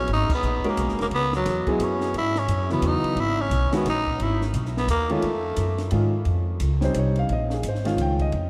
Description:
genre	modal jazz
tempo	175 BPM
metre	3/4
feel	swing 62% on 8ths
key	unclear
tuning	A4 = 440 Hz
part	growling tenor saxophone	melody	0.0-5.9 s	F#3 to E4	-28 LUFS	equal	none
part	warm grand piano	accompaniment	0.0-8.5 s	C#3 to G5	-30 LUFS	equal	none
part	upright bass	bass	0.0-8.5 s	E1 to G#2	-27 LUFS	equal	none
part	compact cocktail drum kit	drums	0.1-8.4 s	crash cymbal, hi-hat, kick drum, ride cymbal, snare drum	-35 LUFS	equal	none
room	wet cathedral reverb, RT60 5.1 s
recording	in a vast, echoing space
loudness	-24 LUFS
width	mono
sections	0.0-6.3 A section; 6.3-8.5 B section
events	band accent 0.3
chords	0.0 C#m7; 2.1 E; 5.2 F7alt; 6.3 Bbm9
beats	| 0.09 0.43 0.77 | 1.12 1.46 1.80 | 2.14 2.49 2.83 | 3.17 3.51 3.86 | 4.20 4.54 4.89 | 5.23 5.57 5.92 | 6.26 6.61 6.95 | 7.29 7.64 7.98 | 8.33

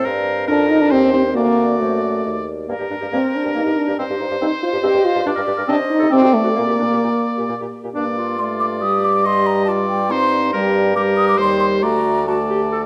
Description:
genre	quick classical-period movement for wind quintet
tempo	138 BPM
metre	3/4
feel	rubato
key	G minor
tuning	A4 = 442 Hz
part	mellow hollow concert flute	melody	0.0-12.8 s	A4 to Eb6	-26 LUFS	equal	none
part	clear oboe	second line	0.0-12.9 s	Bb4 to Eb5	-26 LUFS	equal	none
part	mellow French horn	accompaniment	0.0-12.9 s	G3 to G4	-21 LUFS	equal	none
part	warm clarinet	accompaniment	0.0-12.8 s	Bb3 to C5	-26 LUFS	equal	none
part	mellow bassoon	bass	0.0-12.9 s	D2 to C3	-27 LUFS	equal	none
room	wet recital hall reverb, RT60 1.6 s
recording	none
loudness	-18 LUFS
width	mono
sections	0.0-8.0 A section; 8.0-12.9 B section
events	none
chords	0.1 Gm; 0.9 Cm/Eb; 1.4 D; 2.7 Gm; 4.0 Cm/G; 5.3 Gm; 5.7 Adim; 6.1 D7/C; 6.6 Gm/Bb; 8.0 Gm; 9.3 Cm/G; 10.5 Gm; 11.4 Cm/Eb; 11.8 D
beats	| 0.06 0.49 0.92 | 1.36 1.81 2.25 | 2.70 3.14 3.57 | 4.00 4.42 4.84 | 5.26 5.69 6.13 | 6.58 7.04 7.50 | 7.96 8.40 8.83 | 9.26 9.69 10.12 | 10.55 10.97 11.40 | 11.84 12.28 12.72

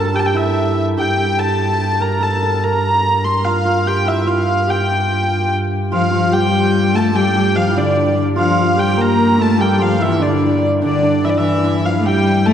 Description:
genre	medieval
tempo	98 BPM (dotted quarters)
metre	6/8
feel	straight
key	G dorian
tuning	A4 = 440 Hz
part	dark hurdy-gurdy	melody	0.0-12.5 s	D5 to C6	-18 LUFS	equal	none
part	hammered dulcimer	second line	0.0-12.5 s	D4 to Bb4	-19 LUFS	right 3 dB	none
part	pipe organ, flutes	drone	0.0-12.5 s	G2	-20 LUFS	equal	none
part	clear viola da gamba	second line	5.9-12.5 s	D3 to Bb3	-17 LUFS	left 4 dB	none
room	wet church reverb, RT60 3.2 s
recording	dark, warm production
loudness	-13 LUFS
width	side -9 dB against mid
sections	0.0-5.9 A section; 5.9-12.5 A section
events	none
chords	none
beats	0.35 | 0.97 1.59 | 2.21 2.83 | 3.45 4.07 | 4.68 5.30 | 5.92 6.53 | 7.15 7.76 | 8.37 8.99 | 9.60 10.21 | 10.82 11.43 | 12.04

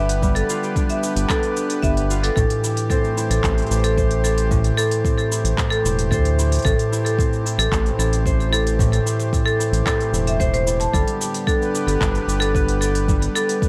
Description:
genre	folktronica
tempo	112 BPM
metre	4/4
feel	straight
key	A minor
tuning	A4 = 440 Hz
part	marimba with hard mallets	second line	0.0-13.4 s	A4 to A5	-26 LUFS	equal	delay
part	accordion	sustained chords	0.0-13.7 s	D3 to C5	-30 LUFS	equal	light tremolo tuning
part	concert harp	arpeggios	0.0-13.7 s	A2 to C5	-27 LUFS	equal	delay
part	round analog bass	bass	0.0-13.3 s	E1 to D2	-23 LUFS	equal	none
part	organic electronic drum kit	drums	0.1-13.7 s	handclaps, hi-hat, shaker	-31 LUFS	equal	none
part	electronic kick drum	drums	0.2-13.7 s	none	-24 LUFS	equal	none
room	light reverb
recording	none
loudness	-20 LUFS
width	mono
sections	0.0-13.7 A section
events	none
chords	0.0 G; 2.4 Am7; 10.9 G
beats	| 0.23 0.76 1.30 1.83 | 2.37 2.90 3.44 3.98 | 4.51 5.05 5.58 6.12 | 6.65 7.19 7.72 8.26 | 8.80 9.33 9.87 10.40 | 10.94 11.47 12.01 12.55 | 13.08 13.62

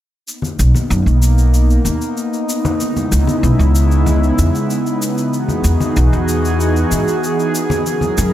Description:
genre	sunset chillout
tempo	95 BPM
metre	4/4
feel	straight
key	B major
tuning	A4 = 440 Hz
part	airy breathy pad	sustained chords	0.3-8.3 s	C#3 to A#4	-17 LUFS	equal	chorus
part	shaker	drums	0.3-8.3 s	none	-27 LUFS	left 2 dB	overdrive
part	congas	percussion	0.4-8.1 s	none	-23 LUFS	left 2 dB	none
part	upright bass	bass	0.6-8.3 s	F#1 to G#2	-13 LUFS	equal	none
room	light reverb, studio ambience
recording	none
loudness	-13 LUFS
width	side -12 dB against mid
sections	0.3-8.3 A section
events	none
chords	0.3 Bmaj7; 2.8 C#m7; 5.3 Emaj7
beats	| 0.28 0.91 1.54 2.17 | 2.80 3.44 4.07 4.70 | 5.33 5.96 6.59 7.22 | 7.86

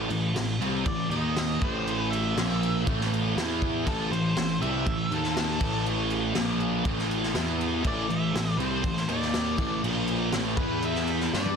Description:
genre	quiet-loud alternative rock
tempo	120 BPM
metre	4/4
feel	straight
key	unclear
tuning	A4 = 440 Hz
part	fuzz guitar	riff	0.0-11.6 s	A2 to G4	-28 LUFS	equal	distortion
part	fuzz picked electric bass	bass	0.0-11.6 s	A1 to G2	-31 LUFS	equal	overdrive
part	raw garage drum kit	drums	0.1-11.6 s	crash cymbal, kick drum, snare drum, toms	-30 LUFS	right 1 dB	none
part	octave-fuzz lead guitar	melody	0.9-11.6 s	A4 to B5	-34 LUFS	left 2 dB	distortion, tape echo
room	light reverb, small room ambience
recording	dense, heavily limited modern master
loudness	-24 LUFS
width	side -6 dB against mid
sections	0.0-11.6 A section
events	lead electric guitar solo 0.0-11.6; drum fill 11.3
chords	0.0 Am; 1.1 D#5; 1.6 Am; 2.4 Bb5; 2.9 A5; 3.4 E5; 3.9 Am; 5.1 D#5; 5.6 A5; 6.4 Bb5; 6.9 A5; 7.3 E5; 7.8 Am; 9.1 D#5; 9.6 A5; 9.8 Bb5; 10.3 A5; 10.6 E5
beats	0.36 0.86 1.36 | 1.86 2.36 2.86 3.36 | 3.86 4.36 4.86 5.36 | 5.86 6.35 6.85 7.35 | 7.85 8.34 8.84 9.34 | 9.83 10.33 10.82 11.32

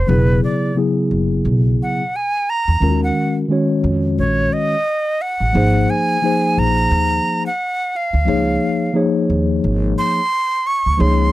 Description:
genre	hip hop, jazz-hop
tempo	88 BPM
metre	4/4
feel	swing 59% on 16ths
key	Db major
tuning	A4 = 436 Hz
part	breathy bright jazz flute	melody	0.0-11.3 s	B4 to Db6	-19 LUFS	right 1 dB	none
part	upright bass	bass	0.0-11.3 s	E1 to F2	-18 LUFS	right 1 dB	none
part	mellow tine electric piano	accompaniment	0.1-11.3 s	C#3 to Db5	-17 LUFS	left 2 dB	slow stereo tremolo
room	little or no reverb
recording	dry, close 1970s-style studio recording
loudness	-15 LUFS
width	side -16 dB against mid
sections	0.0-11.3 A section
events	flute solo 0.0-11.3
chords	0.1 E69; 2.8 Ebm9; 5.5 Ab69; 8.3 Dbmaj9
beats	| 0.09 0.77 1.46 2.14 | 2.82 3.50 4.18 4.86 | 5.55 6.23 6.91 7.59 | 8.27 8.96 9.64 10.32 | 11.00

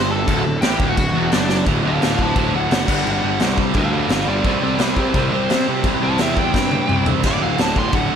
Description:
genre	punk rock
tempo	172 BPM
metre	4/4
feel	straight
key	D mixolydian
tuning	A4 = 440 Hz
part	biting lead guitar	melody	0.0-8.1 s	D4 to C6	-23 LUFS	equal	overdrive
part	distorted electric guitar	riff	0.0-8.2 s	D2 to C4	-24 LUFS	right 15 dB	overdrive
part	raw garage guitar	riff	0.0-8.2 s	D2 to C4	-26 LUFS	left 13 dB	overdrive
part	thick fuzz guitar	riff	0.0-8.2 s	D2 to C4	-25 LUFS	equal	distortion
part	fuzz picked electric bass	bass	0.0-8.2 s	D1 to C3	-23 LUFS	equal	overdrive
part	raw garage drum kit	drums	0.3-8.0 s	crash cymbal, kick drum, snare drum, splash cymbal, toms	-20 LUFS	equal	none
room	little or no reverb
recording	none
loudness	-16 LUFS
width	side -8 dB against mid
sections	0.0-1.7 A section; 1.7-8.2 B section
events	drum fill 1.5, 6.5-7.2; lead electric guitar solo 1.7-8.2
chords	0.0 D; 2.9 G5; 4.5 C; 7.2 D5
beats	| 0.28 0.62 0.97 1.32 | 1.67 2.02 2.37 2.71 | 3.06 3.41 3.76 4.11 | 4.45 4.80 5.15 5.50 | 5.84 6.19 6.54 6.89 | 7.23 7.58 7.93

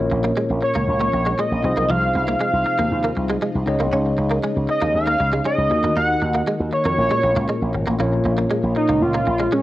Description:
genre	pop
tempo	118 BPM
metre	4/4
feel	straight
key	Bb minor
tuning	A4 = 435 Hz
part	tine electric piano	accompaniment	0.0-9.6 s	Bb2 to Eb5	-23 LUFS	left 1 dB	fast stereo tremolo, cassette tape
part	ethereal airy pad	sustained chords	0.0-9.6 s	Db3 to Gb4	-33 LUFS	left 2 dB	none
part	slap bass with an envelope filter	bass	0.0-9.5 s	Ab1 to Bb2	-23 LUFS	equal	none
part	direct-recorded clean electric guitar	riff	0.1-9.6 s	F3 to Eb4	-26 LUFS	right 2 dB	analog chorus, cassette tape, tape echo
part	octave-doubled lead	melody	0.6-9.6 s	Db4 to Gb5	-20 LUFS	equal	chorus, cassette tape
room	moderate studio ambience, RT60 0.5 s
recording	home recording on cassette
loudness	-17 LUFS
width	side -15 dB against mid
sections	0.0-8.0 A section; 8.0-9.6 A section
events	none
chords	0.0 Bbm; 1.6 Fm7; 3.7 Dbsus2; 5.7 Ebm; 7.0 Bbm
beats	0.37 0.88 1.39 | 1.90 2.40 2.91 3.42 | 3.93 4.44 4.95 5.46 | 5.96 6.47 6.98 7.49 | 8.00 8.51 9.02 9.52

